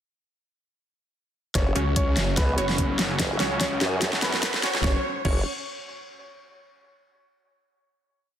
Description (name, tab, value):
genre	heavy wobble dubstep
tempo	146 BPM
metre	4/4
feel	swing 54% on 16ths, half-time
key	unclear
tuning	A4 = 442 Hz
part	bright concert grand piano	melody	1.6-5.4 s	B3 to C#5	-33 LUFS	equal	low-pass filter, dub echo
part	supersaw chords	sustained chords	1.6-5.0 s	C#3 to C#5	-32 LUFS	left 1 dB	sidechain pumping, low-pass filter
part	formant-sweep wobble bass	bass	1.6-5.4 s	F#1 to F#2	-26 LUFS	equal	chorus, overdrive
part	dubstep drum kit	drums	1.6-5.3 s	crash cymbal, hi-hat, snare drum	-28 LUFS	equal	overdrive
part	electronic kick drum	drums	1.6-5.3 s	none	-26 LUFS	equal	overdrive
part	riser	sound effects	3.2-4.8 s	none	-35 LUFS	equal	none
part	orchestra-hit-like synth stab	stabs	1.8-5.4 s	C#4 to C#5	-32 LUFS	right 3 dB	built-in reverb, dub echo
part	snarling distorted saw bass	bass	1.8-4.8 s	F#1 to F#2	-28 LUFS	equal	distortion, overdrive
room	light reverb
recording	dense, heavily limited modern master, high-pass filter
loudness	-22 LUFS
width	side -10 dB against mid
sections	1.6-4.8 build; 4.8-6.5 final chord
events	build-up 1.6-4.8; drum fill 1.6-4.8; filter sweep on supersaw synth 1.6-4.8; filter sweep 1.6-4.8; riser 3.2-4.8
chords	1.6 F#5